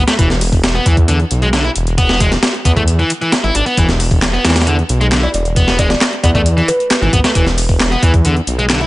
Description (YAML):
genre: breakbeat, breaks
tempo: 134 BPM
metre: 4/4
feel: straight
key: unclear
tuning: A4 = 439 Hz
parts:
  - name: overdriven electric guitar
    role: riff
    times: 0.0-8.9 s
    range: D3 to E4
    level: -17 LUFS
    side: equal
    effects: digital delay
  - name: detuned saw bass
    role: bass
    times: 0.0-8.9 s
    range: E1 to E2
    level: -15 LUFS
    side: equal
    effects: tube saturation
  - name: breakbeat sampler-style drum kit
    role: drums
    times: 0.1-8.8 s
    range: hi-hat, kick drum, snare drum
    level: -14 LUFS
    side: equal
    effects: none
  - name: house drum kit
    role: drums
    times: 0.1-8.9 s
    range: handclaps, hi-hat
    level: -24 LUFS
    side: left 1 dB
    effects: none
  - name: kalimba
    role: melody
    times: 5.2-7.3 s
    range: B4 to D5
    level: -20 LUFS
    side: equal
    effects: telephone sound, digital delay
room: digital ambience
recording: nothing above 10.3 kHz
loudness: -11 LUFS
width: side -18 dB against mid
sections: 0.0-8.9 A section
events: none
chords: 0.0 E5